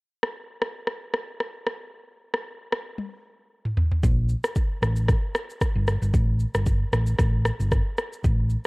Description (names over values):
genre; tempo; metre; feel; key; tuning
afrobeats; 114 BPM; 4/4; swing 55% on 16ths; unclear; A4 = 440 Hz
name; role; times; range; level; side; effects
afro-pop drum kit; drums; 0.2-8.6 s; kick drum, rim click, shaker, toms; -24 LUFS; equal; none
hollow-body short-scale fingered electric bass; bass; 4.0-8.5 s; G1 to Bb1; -23 LUFS; equal; none
room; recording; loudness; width
digital ambience; worn, warbling old tape, cassette tape, warbly pitch drift; -23 LUFS; side -29 dB against mid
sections
0.0-4.0 A section; 4.0-8.7 B section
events
drum fill 3.0-4.0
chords
none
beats
0.35 0.88 1.40 | 1.93 2.45 2.98 3.51 | 4.03 4.56 5.09 5.61 | 6.14 6.67 7.19 7.72 | 8.24